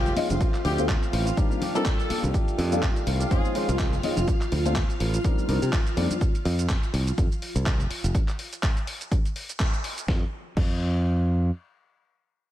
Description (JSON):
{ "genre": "filtered disco house", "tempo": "124 BPM", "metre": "4/4", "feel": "swing 56% on 16ths", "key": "F mixolydian", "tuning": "A4 = 440 Hz", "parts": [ { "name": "bright horn section", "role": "melody", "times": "0.0-3.5 s", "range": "G4 to A4", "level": "-34 LUFS", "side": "left 3 dB", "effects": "sidechain pumping, analog delay" }, { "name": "string machine, full ensemble", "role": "sustained chords", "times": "0.0-8.2 s", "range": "F4 to F5", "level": "-32 LUFS", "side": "equal", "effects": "ensemble chorus, sidechain pumping" }, { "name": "direct-recorded clean electric guitar", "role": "riff", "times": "0.0-4.3 s", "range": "Eb3 to G4", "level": "-34 LUFS", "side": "right 1 dB", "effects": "wide subtle chorus, sidechain pumping" }, { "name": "modern bright fingered electric bass", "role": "bass", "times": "0.0-11.5 s", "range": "F1 to C3", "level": "-25 LUFS", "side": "equal", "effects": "sidechain pumping" }, { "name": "dusty soul sampler-style drum kit", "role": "drums", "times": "0.1-10.7 s", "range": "crash cymbal, handclaps, hi-hat, shaker, snare drum", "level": "-34 LUFS", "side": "equal", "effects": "sidechain pumping on hats, sidechain pumping on cymbals, sidechain pumping on perc" }, { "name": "egg shaker and congas", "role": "percussion", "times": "0.1-6.2 s", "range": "none", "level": "-34 LUFS", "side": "left 2 dB", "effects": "sidechain pumping on perc" }, { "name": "dark baby grand piano", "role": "accompaniment", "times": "0.2-6.1 s", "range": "G3 to Eb5", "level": "-31 LUFS", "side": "left 2 dB", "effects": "phaser, sidechain pumping" }, { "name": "electronic kick drum", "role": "drums", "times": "0.4-10.7 s", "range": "none", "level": "-24 LUFS", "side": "equal", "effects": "none" } ], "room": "little or no reverb", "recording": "none", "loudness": "-23 LUFS", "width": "side -13 dB against mid", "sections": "0.0-10.1 A section; 10.1-12.5 B section", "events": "drop 0.0-10.1; band accent 9.6", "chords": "0.4 Dm7; 1.4 Cm9; 2.3 F13; 3.3 Dbmaj9; 4.3 Dm7; 5.2 Cm9; 6.2 F5; 8.1 N.C." }